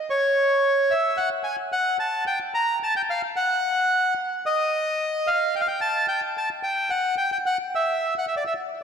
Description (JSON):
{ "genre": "tango", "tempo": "110 BPM", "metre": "4/4", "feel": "rubato", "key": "unclear", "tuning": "A4 = 439 Hz", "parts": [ { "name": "bandoneon", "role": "solo", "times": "0.1-8.5 s", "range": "C#5 to Bb5", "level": "-21 LUFS", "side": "equal", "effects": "ping-pong delay" } ], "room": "wet plate reverb, RT60 3.9 s", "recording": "dreamy mix soaked in reverb", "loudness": "-21 LUFS", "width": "side -7 dB against mid", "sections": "0.0-8.8 A section", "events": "none", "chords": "none", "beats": "| 0.10 0.64 1.18 1.72 | 2.26 2.80 3.35 3.90 | 4.45 4.99 5.54 6.08 | 6.63 7.17 7.70 8.24" }